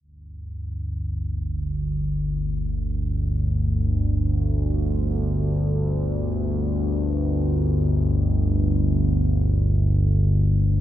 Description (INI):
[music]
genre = dark ambient drone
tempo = free time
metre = none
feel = none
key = unclear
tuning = A4 = 441 Hz
[part]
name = analog drone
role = solo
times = 0.4-10.8 s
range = G1 to D2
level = -20 LUFS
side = equal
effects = chorus, diffuse ambient delay
[sound]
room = wet cathedral reverb, RT60 5.6 s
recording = dark, warm production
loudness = -20 LUFS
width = side -12 dB against mid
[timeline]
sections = 0.0-10.8 A section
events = none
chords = 0.0 G5